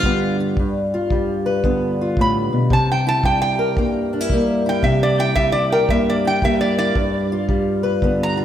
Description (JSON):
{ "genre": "acoustic country blues, solo or duo", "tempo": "113 BPM", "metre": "4/4", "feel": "swing 65% on 8ths", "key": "unclear", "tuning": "A4 = 440 Hz", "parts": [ { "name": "metal-body resonator slide guitar", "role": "melody", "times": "0.0-8.4 s", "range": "G4 to B5", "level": "-21 LUFS", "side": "right 2 dB", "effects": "analog delay" }, { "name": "fingerpicked acoustic archtop guitar", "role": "accompaniment", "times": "0.0-8.4 s", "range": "G2 to B4", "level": "-18 LUFS", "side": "left 1 dB", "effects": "wide subtle chorus" }, { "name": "kick drum", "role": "drums", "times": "0.0-8.2 s", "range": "none", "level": "-24 LUFS", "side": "equal", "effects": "none" } ], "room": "moderate plate reverb, RT60 1.6 s, small room ambience", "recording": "dreamy mix soaked in reverb", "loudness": "-16 LUFS", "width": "side -10 dB against mid", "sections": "0.0-8.4 A section", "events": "resonator guitar played with a steel bar solo 0.0-8.4", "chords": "0.0 G7; 2.7 C7; 7.0 G7" }